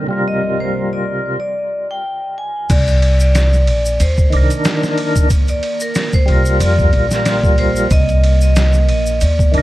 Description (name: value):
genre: trip hop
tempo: 92 BPM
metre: 4/4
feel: swing 55% on 16ths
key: C minor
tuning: A4 = 440 Hz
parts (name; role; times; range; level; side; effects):
- percussive tonewheel organ; accompaniment; 0.0-9.6 s; C3 to Bb4; -20 LUFS; equal; slow rotary speaker, tremolo, tape echo
- string machine, cellos; sustained chords; 0.0-1.4 s; C3 to Bb4; -24 LUFS; left 2 dB; ensemble chorus
- vibraphone with hard mallets; melody; 0.3-9.6 s; Bb4 to Ab5; -20 LUFS; equal; tape echo
- upright bass; bass; 2.7-9.6 s; Bb1 to F2; -14 LUFS; equal; none
- trip hop sampler-style drum kit; drums; 2.7-9.6 s; crash cymbal, kick drum, ride cymbal, snare drum; -16 LUFS; equal; none
- tube shaker; percussion; 2.7-9.5 s; none; -30 LUFS; left 1 dB; none
- bowed-like drone; texture; 3.7-9.6 s; Bb3; -28 LUFS; right 5 dB; built-in reverb
room: light reverb, small room ambience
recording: dark, warm production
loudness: -12 LUFS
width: side -16 dB against mid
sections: 0.0-2.7 A section; 2.7-9.6 B section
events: break 1.4-2.7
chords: 0.1 Gm7/C; 2.7 Cm9; 5.3 Gm7; 7.9 Cm9